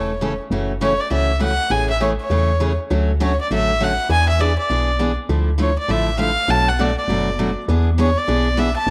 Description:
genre	acoustic string swing (jazz manouche)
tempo	201 BPM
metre	4/4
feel	swing 60% on 8ths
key	unclear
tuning	A4 = 440 Hz
part	warm violin	melody	0.0-8.9 s	C#5 to A5	-23 LUFS	equal	none
part	picked steel-string acoustic guitar	accompaniment	0.0-8.9 s	B2 to A4	-24 LUFS	equal	none
part	woody FM bass	bass	0.0-8.9 s	E1 to E2	-23 LUFS	equal	none
room	moderate spring reverb, RT60 1.9 s, studio reverb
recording	none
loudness	-19 LUFS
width	mono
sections	0.5-8.9 A section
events	none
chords	0.0 A; 0.5 F#m7; 1.7 Amaj7; 2.9 Dmaj7; 4.1 E7; 5.3 Dmadd9; 6.5 Bm7; 7.7 E7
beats	0.22 | 0.52 0.81 1.11 1.41 | 1.71 2.01 2.31 2.61 | 2.91 3.21 3.50 3.80 | 4.10 4.40 4.70 5.00 | 5.30 5.59 5.89 6.19 | 6.49 6.79 7.09 7.38 | 7.68 7.98 8.28 8.57 | 8.87

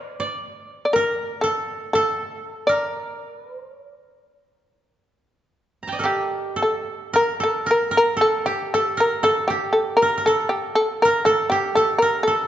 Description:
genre	japanese traditional, Japanese chamber music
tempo	54-62 BPM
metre	4/4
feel	rubato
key	D miyako bushi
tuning	A4 = 440 Hz
part	shamisen	melody	0.0-12.5 s	G4 to D5	-20 LUFS	left 1 dB	none
part	koto	second line	0.0-12.5 s	G4 to Bb5	-24 LUFS	right 2 dB	none
room	moderate concert hall reverb, RT60 2.1 s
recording	dark, warm production, nothing above 7.7 kHz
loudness	-18 LUFS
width	side -11 dB against mid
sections	0.0-7.1 A section; 7.1-12.5 B section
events	none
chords	none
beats	0.93 1.93 | 2.95 3.96 4.99 6.07 | 7.15 8.19 9.23 10.26 | 11.27 12.26

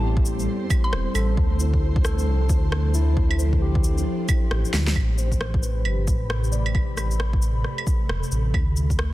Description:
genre	future garage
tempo	134 BPM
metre	4/4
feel	swing 62% on 16ths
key	A minor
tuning	A4 = 440 Hz
part	mellow tine electric piano	accompaniment	0.0-8.6 s	C4 to D5	-33 LUFS	left 3 dB	sidechain pumping, tape echo
part	ethereal airy pad	sustained chords	0.0-9.1 s	C3 to B5	-31 LUFS	equal	ensemble chorus, built-in reverb, sidechain pumping
part	dark detuned saw bass	bass	0.0-9.1 s	E1 to D2	-23 LUFS	equal	sidechain pumping
part	flickering grainy texture	texture	0.0-5.0 s	C4 to C5	-40 LUFS	right 2 dB	built-in reverb
part	electronic kick drum	drums	0.2-9.0 s	none	-23 LUFS	equal	small room ambience
part	electronic shaker, claves, rim click and snare drum	drums	0.3-9.1 s	none	-30 LUFS	right 1 dB	small room ambience
part	mallet-like synth pluck	melody	0.8-1.3 s	C6	-35 LUFS	equal	chorus, tape echo
room	light reverb, digital ambience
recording	dense, heavily limited modern master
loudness	-20 LUFS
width	side -16 dB against mid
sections	0.0-5.0 A section; 5.0-9.1 B section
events	drum fill 4.7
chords	0.0 Am9; 1.4 Dm7; 5.0 Am9; 8.5 Dm7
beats	0.03 0.48 0.93 | 1.38 1.82 2.27 2.72 | 3.17 3.61 4.06 4.51 | 4.96 5.41 5.85 6.30 | 6.75 7.20 7.64 8.09 | 8.54 8.99

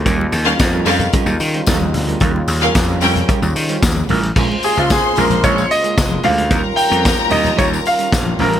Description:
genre	disco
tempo	112 BPM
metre	4/4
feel	straight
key	unclear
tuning	A4 = 440 Hz
part	warm French horn section	sustained chords	0.0-8.6 s	Db3 to F4	-26 LUFS	left 2 dB	none
part	gritty slap bass	bass	0.0-8.6 s	F1 to Eb3	-18 LUFS	equal	overdrive
part	mellow electric guitar	accompaniment	0.1-8.6 s	G3 to C5	-23 LUFS	right 8 dB	wide subtle chorus
part	vintage drum kit	drums	0.1-8.6 s	crash cymbal, hi-hat, kick drum, snare drum	-19 LUFS	equal	gated reverb
part	tambourine	percussion	0.1-8.3 s	none	-30 LUFS	left 8 dB	none
part	congas	percussion	0.2-8.5 s	none	-26 LUFS	left 5 dB	none
part	clear symphonic string section	second line	0.5-8.4 s	Db4 to C6	-20 LUFS	left 3 dB	none
part	clear grand piano	melody	4.6-8.6 s	F4 to G5	-17 LUFS	right 1 dB	none
room	light reverb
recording	none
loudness	-13 LUFS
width	side -10 dB against mid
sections	0.0-4.4 A section; 4.4-8.6 B section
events	grand piano solo 4.4-8.6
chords	0.1 Eb9; 4.4 Bbm7; 6.5 Eb9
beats	| 0.06 0.60 1.14 1.67 | 2.21 2.75 3.29 3.82 | 4.36 4.90 5.44 5.98 | 6.51 7.05 7.59 8.13

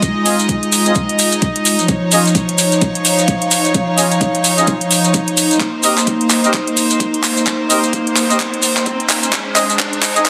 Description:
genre	bass house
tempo	129 BPM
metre	4/4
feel	swing 60% on 16ths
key	unclear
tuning	A4 = 440 Hz
part	rich studio string section	sustained chords	0.0-10.3 s	F3 to Eb5	-19 LUFS	equal	vintage 12-bit sampler grit, sidechain pumping
part	electronic kick drum	drums	0.0-10.3 s	none	-21 LUFS	equal	high-pass filter on kick, small room reverb
part	garage drum kit	drums	0.0-10.3 s	handclaps, hi-hat	-19 LUFS	equal	high-pass filter on hats, small room reverb, high-pass filter on snare
part	maracas	percussion	0.0-10.3 s	none	-22 LUFS	equal	none
part	warbly tape-like pad	texture	0.0-10.3 s	Eb4 to Bb5	-25 LUFS	equal	chorus, built-in reverb, phaser, sidechain pumping
part	warm horn section	stabs	0.3-10.2 s	C4 to Eb5	-22 LUFS	equal	sidechain pumping, tape echo
part	riser	sound effects	7.0-10.3 s	none	-30 LUFS	equal	none
room	wet digital room reverb, RT60 1.1 s, small room ambience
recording	dense, heavily limited modern master, high-pass filter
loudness	-14 LUFS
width	mono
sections	0.0-10.3 A section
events	build-up 0.0-10.3; drum fill 5.6-10.3; riser 7.0-10.3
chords	0.0 Fm7; 1.9 Dbadd9; 5.6 Cm7; 9.3 Ab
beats	| 0.03 0.49 0.95 1.42 | 1.89 2.35 2.82 3.28 | 3.75 4.21 4.68 5.14 | 5.61 6.07 6.54 7.00 | 7.47 7.93 8.40 8.86 | 9.33 9.79 10.26

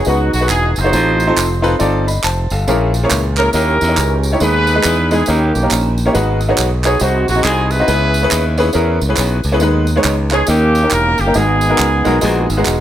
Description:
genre	uptempo gospel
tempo	138 BPM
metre	4/4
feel	swing 63% on 8ths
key	G# minor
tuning	A4 = 440 Hz
part	mellow horn section	melody	0.0-12.7 s	A#3 to B#4	-17 LUFS	right 1 dB	tape echo
part	tambourine and handclaps	percussion	0.0-12.8 s	none	-22 LUFS	right 4 dB	none
part	clear concert grand piano	accompaniment	0.1-12.8 s	G#2 to B5	-16 LUFS	left 1 dB	none
part	modern bright fingered electric bass	bass	0.1-12.8 s	E1 to E2	-16 LUFS	equal	none
room	light reverb, small room ambience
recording	none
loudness	-12 LUFS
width	side -11 dB against mid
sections	0.0-12.8 A section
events	none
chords	0.0 G#m7; 0.9 F7; 2.7 A#m7b5; 3.5 D#7b9; 4.4 G#m/D#; 5.3 D#7; 6.1 G#m7; 7.0 G#7; 7.9 C#m7; 9.6 G#m/D#; 10.5 D#7; 11.3 G#m7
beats	0.06 0.50 | 0.93 1.37 1.80 2.24 | 2.67 3.10 3.54 3.97 | 4.41 4.84 5.27 5.71 | 6.14 6.57 7.01 7.44 | 7.88 8.31 8.74 9.18 | 9.61 10.05 10.48 10.92 | 11.35 11.79 12.22 12.65

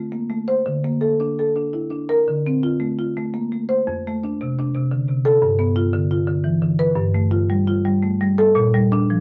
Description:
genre	classical, contemporary piece for solo marimba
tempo	114 BPM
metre	3/4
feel	rubato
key	unclear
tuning	A4 = 439 Hz
part	marimba with medium mallets	solo	0.0-9.2 s	F2 to C5	-20 LUFS	equal	none
room	moderate small room reverb, RT60 0.5 s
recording	none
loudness	-20 LUFS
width	mono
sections	0.0-9.2 A section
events	none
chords	0.0 D7(no3); 0.7 Bbmaj7/D; 2.3 Dm7; 3.9 F6; 5.4 G7; 7.0 Fadd9/G; 8.6 Bb6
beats	0.13 | 0.67 1.21 1.75 | 2.29 2.81 3.34 | 3.88 4.41 4.92 | 5.43 5.95 6.47 | 6.98 7.51 8.04 | 8.56 9.10

